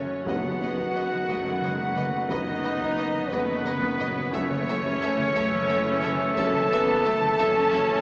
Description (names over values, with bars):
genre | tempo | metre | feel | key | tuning
cinematic, epic orchestral film score | 59 BPM (dotted quarters) | 6/8 | straight | unclear | A4 = 440 Hz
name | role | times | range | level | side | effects
rich symphonic violin section | melody | 0.0-8.0 s | B4 to A5 | -34 LUFS | equal | none
bright small flute group | second line | 0.0-8.0 s | B4 to A5 | -32 LUFS | equal | none
rich symphonic viola section | accompaniment | 0.0-8.0 s | F#3 to C#4 | -32 LUFS | equal | none
clear woodwind section | sustained chords | 0.0-8.0 s | C#4 to F#5 | -33 LUFS | equal | none
mellow French horn section | sustained chords | 0.0-8.0 s | B3 to A4 | -26 LUFS | equal | none
warm trombone section | sustained chords | 0.0-8.0 s | D#3 to B3 | -36 LUFS | equal | none
rich symphonic cello section | bass | 0.0-8.0 s | F#2 | -35 LUFS | equal | none
rich symphonic double bass section | bass | 0.0-8.0 s | F#1 | -35 LUFS | equal | none
rich studio violin section | second line | 0.3-7.8 s | A4 to E5 | -37 LUFS | equal | none
taiko ensemble | drums | 0.3-8.0 s | none | -34 LUFS | equal | none
timpani | percussion | 0.3-1.2 s | F#2 | -35 LUFS | equal | none
room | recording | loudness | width
wet concert hall reverb, RT60 2.5 s | small speaker sound | -22 LUFS | side -29 dB against mid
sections
0.0-8.0 A section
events
drum fill 3.8-4.3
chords
0.3 B/F#; 4.3 A/F#